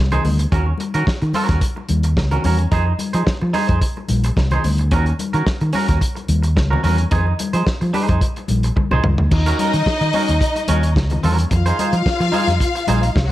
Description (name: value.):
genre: disco.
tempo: 109 BPM.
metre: 4/4.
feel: straight.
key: Eb dorian.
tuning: A4 = 440 Hz.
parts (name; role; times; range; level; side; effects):
fingered electric bass; bass; 0.0-13.3 s; Bb1 to F3; -17 LUFS; equal; none.
twangy electric guitar; accompaniment; 0.1-13.3 s; Db4 to C5; -24 LUFS; right 4 dB; none.
warm soul drum kit; drums; 0.1-13.3 s; crash cymbal, hi-hat, kick drum, snare drum, toms; -21 LUFS; equal; none.
congas; percussion; 0.1-13.3 s; none; -25 LUFS; left 5 dB; none.
warm studio string section; second line; 9.3-13.3 s; Gb3 to F5; -21 LUFS; left 2 dB; none.
room: studio reverb.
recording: none.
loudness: -15 LUFS.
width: side -14 dB against mid.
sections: 0.0-9.3 A section; 9.3-13.3 B section.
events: drum fill 8.8-9.3.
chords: 0.0 Fm7 (rootless); 0.5 Ebm7; 2.7 Fm7; 4.9 Ebm7; 7.1 Fm7; 9.3 Ebm7; 11.5 Fm7.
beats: | 0.52 1.07 1.62 2.17 | 2.72 3.27 3.82 4.37 | 4.92 5.47 6.02 6.57 | 7.12 7.67 8.22 8.77 | 9.32 9.87 10.41 10.96 | 11.51 12.06 12.61 13.16.